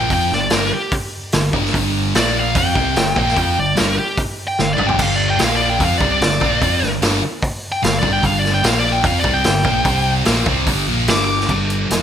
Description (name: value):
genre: hard rock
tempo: 148 BPM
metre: 4/4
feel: straight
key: unclear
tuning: A4 = 439 Hz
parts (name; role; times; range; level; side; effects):
- high-gain lead guitar; melody; 0.0-11.5 s; G4 to D6; -20 LUFS; left 1 dB; distortion, ping-pong delay
- sludgy distorted guitar; riff; 0.0-12.0 s; F2 to F4; -19 LUFS; equal; overdrive
- fingered electric bass; bass; 0.0-12.0 s; F1 to F2; -23 LUFS; equal; none
- raw garage drum kit; drums; 0.1-12.0 s; crash cymbal, hi-hat, kick drum, snare drum, toms; -20 LUFS; equal; gated reverb
room: moderate plate reverb, RT60 1.2 s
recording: bright 1980s-style digital production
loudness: -14 LUFS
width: side -9 dB against mid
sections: 0.0-11.5 A section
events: lead electric guitar solo 0.0-11.5; drum fill 4.6-5.0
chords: 0.0 G5; 2.1 Bb5; 2.6 G5; 5.4 Bb5; 5.8 G5; 8.6 Bb5; 9.0 G5; 9.9 C5; 10.3 G5